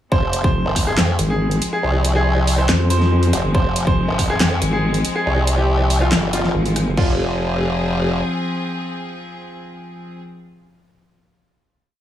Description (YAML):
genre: heavy wobble dubstep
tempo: 140 BPM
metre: 4/4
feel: half-time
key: F minor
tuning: A4 = 440 Hz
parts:
  - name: clear baby grand piano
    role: melody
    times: 0.1-10.2 s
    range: F4 to C5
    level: -25 LUFS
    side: right 1 dB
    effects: dub echo
  - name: bright chamber string section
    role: sustained chords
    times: 0.1-10.2 s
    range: F3 to Ab4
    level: -26 LUFS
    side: left 2 dB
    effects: sidechain pumping, low-pass filter
  - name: formant-sweep wobble bass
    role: bass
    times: 0.1-8.2 s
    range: F1 to F2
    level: -19 LUFS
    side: equal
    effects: chorus, overdrive
  - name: dubstep drum kit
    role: drums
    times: 0.1-0.8, 3.5-4.3, 7.0-7.1 s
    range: crash cymbal, kick drum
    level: -20 LUFS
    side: equal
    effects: studio reverb
  - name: dubstep drum kit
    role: drums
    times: 0.3-6.8 s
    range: handclaps, hi-hat, rim click, snare drum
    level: -21 LUFS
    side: equal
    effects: studio reverb
  - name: vowel-sweep wobble bass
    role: bass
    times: 0.4-7.0 s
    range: F1 to F2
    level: -18 LUFS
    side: equal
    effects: chorus, overdrive
room: little or no reverb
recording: studio ambience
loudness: -16 LUFS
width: side -11 dB against mid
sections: 0.1-7.0 drop; 7.0-10.4 final chord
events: drop 0.1-7.0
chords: 0.1 Fm